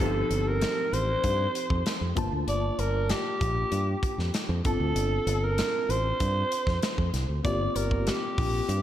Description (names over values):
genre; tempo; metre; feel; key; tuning
polished 1980s jazz-funk pop; 97 BPM; 4/4; straight; G minor; A4 = 436 Hz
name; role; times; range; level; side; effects
growling alto saxophone; melody; 0.0-8.8 s; G4 to D5; -29 LUFS; right 1 dB; diffuse ambient delay
tine electric piano; accompaniment; 0.0-8.8 s; F3 to A5; -34 LUFS; left 2 dB; overdrive, fast stereo tremolo, ensemble chorus
fingered electric bass; bass; 0.0-8.8 s; G1 to G2; -28 LUFS; equal; none
modern studio drum kit; drums; 0.0-8.8 s; hi-hat, kick drum, snare drum; -31 LUFS; equal; none
room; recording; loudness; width
moderate plate reverb, RT60 2.6 s; dreamy mix soaked in reverb; -25 LUFS; side -11 dB against mid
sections
0.0-8.8 A section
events
none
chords
0.0 F7/G; 2.2 Gm7; 4.7 Gm11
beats
| 0.00 0.62 1.24 1.86 | 2.48 3.10 3.72 4.34 | 4.96 5.58 6.20 6.82 | 7.45 8.07 8.69